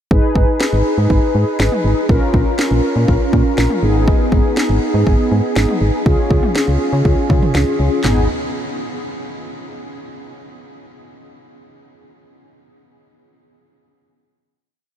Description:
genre	synth-pop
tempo	121 BPM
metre	4/4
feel	straight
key	G# dorian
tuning	A4 = 442 Hz
part	mellow synth brass	accompaniment	0.1-8.3 s	B3 to B4	-18 LUFS	equal	chorus
part	solid FM bass	bass	0.1-8.3 s	G#1 to C#3	-16 LUFS	equal	none
part	house drum kit	drums	0.1-8.2 s	handclaps, kick drum, snare drum, toms	-18 LUFS	equal	overdrive
room	moderate huge ambient reverb, RT60 7.8 s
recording	dreamy mix soaked in reverb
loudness	-13 LUFS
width	side -10 dB against mid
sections	0.1-8.0 verse; 8.0-10.0 final chord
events	none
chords	0.1 G#m; 2.1 A#m; 3.8 G#m; 6.1 C#; 8.0 G#m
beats	| 0.11 0.61 1.10 1.60 | 2.09 2.59 3.08 3.58 | 4.08 4.57 5.07 5.56 | 6.06 6.56 7.05 7.55 | 8.04

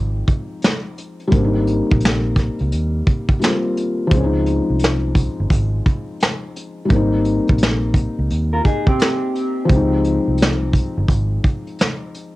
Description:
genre	lo-fi hip hop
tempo	86 BPM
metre	4/4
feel	swing 65% on 16ths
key	unclear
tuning	A4 = 438 Hz
part	felt-muted upright piano	accompaniment	0.0-12.4 s	F3 to F4	-21 LUFS	left 2 dB	low-pass filter, cassette tape
part	vintage muted fingered electric bass	bass	0.0-11.4 s	G1 to Eb2	-20 LUFS	equal	none
part	vintage brush drum kit	drums	0.3-12.4 s	hi-hat, kick drum, snare drum	-17 LUFS	equal	vintage 12-bit sampler grit, cassette tape
part	mellow electric guitar	second line	8.5-9.7 s	C4 to Bb4	-22 LUFS	equal	low-pass filter, cassette tape, tape echo
room	light reverb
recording	home recording on cassette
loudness	-16 LUFS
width	side -18 dB against mid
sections	0.0-12.4 A section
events	none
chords	0.0 Dbmaj9 (rootless); 1.3 Abmaj9; 4.1 Dbmaj9; 6.9 Abmaj9; 9.7 Dbmaj9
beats	0.62 | 1.32 2.02 2.72 3.42 | 4.11 4.81 5.51 6.21 | 6.90 7.60 8.30 9.00 | 9.69 10.39 11.09 11.79

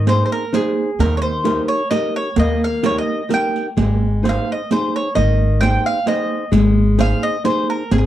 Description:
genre	italian folk, Italian serenade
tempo	130 BPM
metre	3/4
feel	swing 54% on 8ths, rubato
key	Ab major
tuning	A4 = 438 Hz
part	mandolin	melody	0.0-8.0 s	Ab4 to G5	-21 LUFS	right 1 dB	none
part	flamenco guitar	accompaniment	0.0-8.1 s	Eb3 to C5	-21 LUFS	left 3 dB	none
part	upright bass	bass	0.0-8.1 s	Ab1 to Ab2	-17 LUFS	equal	none
part	riq	percussion	0.1-8.1 s	none	-23 LUFS	right 7 dB	none
room	little or no reverb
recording	dry, close 1970s-style studio recording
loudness	-15 LUFS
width	side -12 dB against mid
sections	0.0-8.1 A section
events	none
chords	0.0 Ab; 1.0 Eb; 3.8 Ab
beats	0.07 0.53 | 0.98 1.44 1.90 | 2.36 2.83 3.30 | 3.77 4.24 4.70 | 5.16 5.62 6.08 | 6.53 6.99 7.45 | 7.92

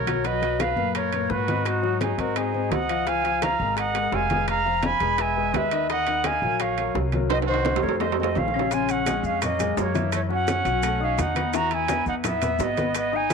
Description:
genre	Afro-Cuban jazz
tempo	170 BPM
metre	4/4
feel	straight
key	unclear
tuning	A4 = 437 Hz
part	silver concert flute	melody	0.0-13.3 s	Gb4 to Cb6	-26 LUFS	right 1 dB	none
part	bright trumpet	second line	0.0-13.3 s	A3 to Ab5	-31 LUFS	right 11 dB	none
part	upright bass	bass	0.0-13.3 s	Fb1 to Ab2	-30 LUFS	right 1 dB	none
part	warm concert grand piano	accompaniment	0.1-13.3 s	A#2 to E6	-28 LUFS	left 13 dB	none
part	bongos	percussion	0.1-13.3 s	none	-36 LUFS	left 14 dB	none
part	claves	percussion	0.1-13.1 s	none	-42 LUFS	left 13 dB	none
part	congas	percussion	0.1-13.3 s	none	-32 LUFS	equal	none
part	timbales	percussion	0.1-13.3 s	none	-31 LUFS	right 15 dB	none
part	maracas	percussion	8.7-13.3 s	none	-40 LUFS	left 18 dB	none
room	moderate spring reverb, RT60 2.7 s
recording	1960s-style stereo with parts hard left and right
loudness	-21 LUFS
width	side -5 dB against mid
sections	0.0-8.7 A section; 8.7-13.3 B section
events	drum fill 7.3-8.7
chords	0.2 Bmaj7; 1.7 Ab7; 3.1 Db69; 4.5 Fdim; 5.2 E; 5.9 Ebm11; 7.3 Cm7b5; 8.0 F; 8.7 Bbm7; 10.1 Gb5; 10.8 B7; 11.5 Emaj7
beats	| 0.25 0.60 0.95 1.31 | 1.66 2.01 2.37 2.72 | 3.07 3.42 3.78 4.13 | 4.48 4.84 5.19 5.54 | 5.89 6.25 6.60 6.95 | 7.31 7.66 8.01 8.37 | 8.72 9.07 9.42 9.78 | 10.13 10.48 10.84 11.19 | 11.54 11.89 12.25 12.60 | 12.95 13.31

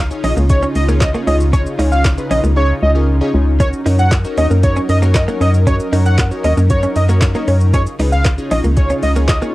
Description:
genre	dance-pop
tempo	116 BPM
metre	4/4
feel	straight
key	F# major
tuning	A4 = 440 Hz
part	wide unison lead	melody	0.0-9.4 s	C#5 to F#5	-20 LUFS	equal	sidechain pumping, cassette tape, analog delay
part	funky polysynth comp	accompaniment	0.0-9.5 s	C#4 to D#5	-24 LUFS	left 1 dB	chorus, sidechain pumping, cassette tape
part	airy breathy pad	sustained chords	0.0-9.5 s	C#3 to A#4	-23 LUFS	equal	chorus, sidechain pumping, cassette tape
part	organ-like FM bass	bass	0.0-9.4 s	A#1 to F#2	-14 LUFS	equal	sidechain pumping
part	smooth R&B drum kit	drums	0.1-9.5 s	handclaps, hi-hat, kick drum, shaker, snare drum	-17 LUFS	equal	cassette tape
part	direct-recorded clean electric guitar	riff	0.2-9.5 s	A#3 to D#4	-22 LUFS	right 2 dB	lush chorus, cassette tape
room	little or no reverb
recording	home recording on cassette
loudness	-12 LUFS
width	side -18 dB against mid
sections	0.0-9.5 A section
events	silent gap 2.6-3.6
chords	0.0 C#add9; 3.6 F#6; 7.7 C#add9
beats	0.50 1.01 | 1.53 2.05 2.56 3.08 | 3.60 4.12 4.63 5.15 | 5.67 6.19 6.70 7.22 | 7.74 8.26 8.77 9.29

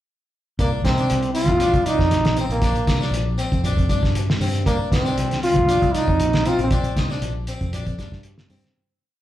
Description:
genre	afrobeat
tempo	118 BPM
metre	4/4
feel	straight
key	C minor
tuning	A4 = 440 Hz
part	bright trombone	melody	0.6-7.1 s	Bb3 to F4	-21 LUFS	equal	slapback echo
part	harpsichord	arpeggios	0.6-8.7 s	C4 to Eb4	-29 LUFS	left 4 dB	slapback echo
part	fingered electric bass	bass	0.6-8.6 s	Bb1 to G2	-23 LUFS	equal	none
part	cloth-damped thuddy drum kit	drums	0.6-8.8 s	hi-hat, kick drum, snare drum	-23 LUFS	equal	none
room	light reverb, studio reverb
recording	live gig heard through the venue's PA, club reverb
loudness	-18 LUFS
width	side -13 dB against mid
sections	0.6-8.8 groove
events	fade-out 6.7-8.8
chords	0.6 C7sus2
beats	| 0.59 1.10 1.61 2.12 | 2.62 3.13 3.64 4.15 | 4.66 5.17 5.69 6.20 | 6.71 7.22 7.73 8.25

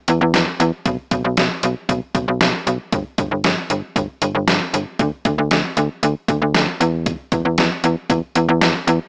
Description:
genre	synth-pop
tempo	116 BPM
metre	4/4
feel	straight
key	unclear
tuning	A4 = 441 Hz
part	slap-like FM bass	bass	0.1-9.0 s	G1 to E2	-20 LUFS	equal	none
part	detuned 8-bit digital drum machine	drums	0.1-9.0 s	hi-hat, kick drum, snare drum	-22 LUFS	equal	none
room	light reverb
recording	dry, gritty hardware recording, transformer saturation, small speaker sound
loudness	-19 LUFS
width	mono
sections	0.0-9.1 A section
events	none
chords	none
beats	0.34 | 0.86 1.37 1.89 2.41 | 2.92 3.44 3.96 4.48 | 4.99 5.51 6.03 6.55 | 7.06 7.58 8.10 8.62

